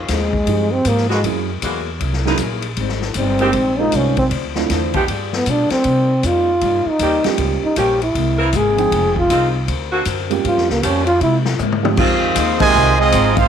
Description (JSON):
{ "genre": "jazz, big band swing", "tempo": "156 BPM", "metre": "4/4", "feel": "swing 64% on 8ths", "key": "F minor", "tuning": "A4 = 440 Hz", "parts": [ { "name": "mellow saxophone section", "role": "sustained chords", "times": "0.0-13.0 s", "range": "D3 to Bb4", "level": "-22 LUFS", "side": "right 1 dB", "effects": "none" }, { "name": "upright bass", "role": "bass", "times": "0.0-13.5 s", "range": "F1 to C3", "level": "-21 LUFS", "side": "right 1 dB", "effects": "none" }, { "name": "breathy trombone", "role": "melody", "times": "0.1-11.4 s", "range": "Ab3 to Ab4", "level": "-17 LUFS", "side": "equal", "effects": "none" }, { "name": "picked steel-string acoustic guitar", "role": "accompaniment", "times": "0.1-13.4 s", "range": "G2 to Bb4", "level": "-26 LUFS", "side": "left 13 dB", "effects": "none" }, { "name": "swinging big-band drum kit", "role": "drums", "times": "0.1-13.4 s", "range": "crash cymbal, hi-hat, kick drum, ride cymbal, snare drum, toms", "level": "-23 LUFS", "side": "left 4 dB", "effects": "none" }, { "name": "dark baby grand piano", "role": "accompaniment", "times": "0.5-12.3 s", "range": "F3 to G5", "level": "-22 LUFS", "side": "right 12 dB", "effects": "none" }, { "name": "bright trumpet section", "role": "melody", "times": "12.6-13.5 s", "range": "C4 to Ab5", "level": "-15 LUFS", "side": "right 1 dB", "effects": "tape echo" }, { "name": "clear trombone section", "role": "second line", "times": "12.6-13.5 s", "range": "C3 to F4", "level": "-16 LUFS", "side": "right 12 dB", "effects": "none" } ], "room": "light reverb, studio ambience", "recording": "1960s-style stereo with parts hard left and right", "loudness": "-14 LUFS", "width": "side -8 dB against mid", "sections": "0.0-12.0 A section; 12.0-13.5 B section", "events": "trombone solo 0.0-12.0; drum fill 11.6-12.0; band accent 12.6", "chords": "0.0 Fm7; 1.2 Gb9; 2.8 Abmaj7; 4.3 Dm9; 5.1 G7b9; 5.8 Cm7; 7.4 Gm7b5; 8.1 C7b13; 8.9 Fm7; 9.7 D7b13; 10.4 Gm7b5; 11.2 C7alt; 12.0 Fm7" }